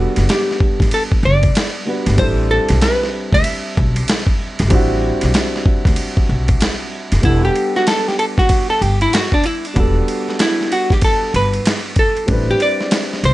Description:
hip hop, jazz-hop; 95 BPM; 4/4; swing 64% on 16ths; E minor; A4 = 440 Hz
hollow-body jazz guitar; melody; 0.0-13.3 s; D4 to E5; -18 LUFS; equal
dark baby grand piano; accompaniment; 0.0-13.3 s; G3 to F#5; -23 LUFS; equal
upright bass; bass; 0.0-13.3 s; E1 to D2; -17 LUFS; equal
dusty soul sampler-style drum kit; drums; 0.2-13.3 s; hi-hat, kick drum, ride cymbal, snare drum; -17 LUFS; equal; overdrive
little or no reverb; nothing above 10.8 kHz; -13 LUFS; side -16 dB against mid
0.0-7.2 A section; 7.2-13.3 B section
hollow-body jazz guitar solo 7.2-13.3
0.0 Em11 (rootless); 2.2 Am11; 7.2 Em11 (rootless); 12.3 Am11

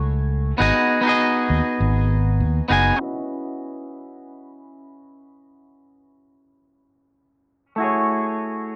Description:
sunset chillout; 100 BPM; 4/4; straight; C# minor; A4 = 439 Hz
clean electric guitar; accompaniment; 0.0-8.8 s; A3 to G#5; -23 LUFS; equal; low-pass filter, digital delay
fretless electric bass; bass; 0.0-2.9 s; F#1 to D#2; -22 LUFS; equal
moderate lush hall reverb, RT60 2.2 s; low-pass filter; -21 LUFS; mono
0.0-3.0 A section; 3.0-8.8 B section
0.0 F#m9; 0.6 G#m7; 3.0 C#m11; 7.8 F#m9

